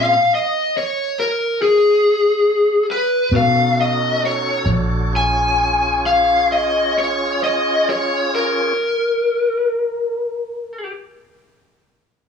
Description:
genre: slow blues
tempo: 44-48 BPM (dotted quarters)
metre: 12/8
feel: straight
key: Bb minor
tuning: A4 = 440 Hz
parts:
  - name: lead guitar through a small cranked amp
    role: melody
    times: 0.0-10.9 s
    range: Ab4 to Ab5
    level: -16 LUFS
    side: left 2 dB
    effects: overdrive
  - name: tonewheel organ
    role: sustained chords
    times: 0.0-8.7 s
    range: C4 to Db5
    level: -23 LUFS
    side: equal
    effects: slow rotary speaker, overdrive
  - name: vintage muted fingered electric bass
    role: bass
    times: 0.0-8.3 s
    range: Bb1 to B2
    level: -21 LUFS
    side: left 1 dB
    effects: none
room: moderate spring reverb, RT60 2.0 s, digital ambience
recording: small room reverb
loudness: -15 LUFS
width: side -6 dB against mid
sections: 0.0-4.7 A section; 4.7-10.1 B section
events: slowing down 0.0-4.7; stop 0.0-3.3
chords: 0.0 Bbm7; 3.3 B7; 4.7 Bbm7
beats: 0.74 2.02 3.32 | 4.67 6.03 7.40 8.77

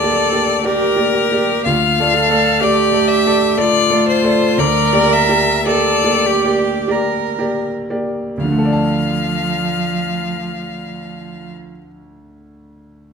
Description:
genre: classical, slow romantic movement for piano trio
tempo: 38-68 BPM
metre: 3/4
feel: rubato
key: D minor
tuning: A4 = 441 Hz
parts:
  - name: clear violin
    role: melody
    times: 0.0-11.5 s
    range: Bb4 to F5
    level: -18 LUFS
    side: left 7 dB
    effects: none
  - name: warm cello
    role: second line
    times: 0.0-11.5 s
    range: F3 to Bb4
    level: -19 LUFS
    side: right 6 dB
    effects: none
  - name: warm concert grand piano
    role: accompaniment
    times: 0.0-13.1 s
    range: D2 to A5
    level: -18 LUFS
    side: left 1 dB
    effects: none
room: moderate recital hall reverb, RT60 1.5 s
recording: minimal, uncompressed stereo recording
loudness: -13 LUFS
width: side -6 dB against mid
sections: 0.0-8.4 A section; 8.4-12.5 B section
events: slowing down 0.2-8.4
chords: 0.0 Gm/D; 1.7 Dm; 4.6 Gm/D; 8.4 Dm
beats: 0.65 | 1.66 2.61 3.58 | 4.59 5.67 6.92 | 8.40 9.76 11.11

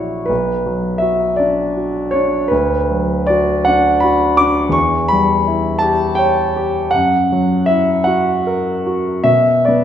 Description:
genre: classical, romantic nocturne for solo piano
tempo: 48-57 BPM (dotted quarters)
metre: 12/8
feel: rubato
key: B minor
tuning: A4 = 436 Hz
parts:
  - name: warm grand piano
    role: solo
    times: 0.0-9.8 s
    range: A#1 to D6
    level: -13 LUFS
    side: equal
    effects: none
room: wet recital hall reverb, RT60 1.5 s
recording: minimal, uncompressed stereo recording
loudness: -13 LUFS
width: side -9 dB against mid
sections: 0.0-9.8 A section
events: none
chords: 0.3 Bm; 2.5 Bm/D; 4.8 C#dim/E; 6.9 F#7; 9.3 Bm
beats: | 0.30 1.40 2.52 3.67 | 4.75 5.82 6.94 8.07 | 9.28

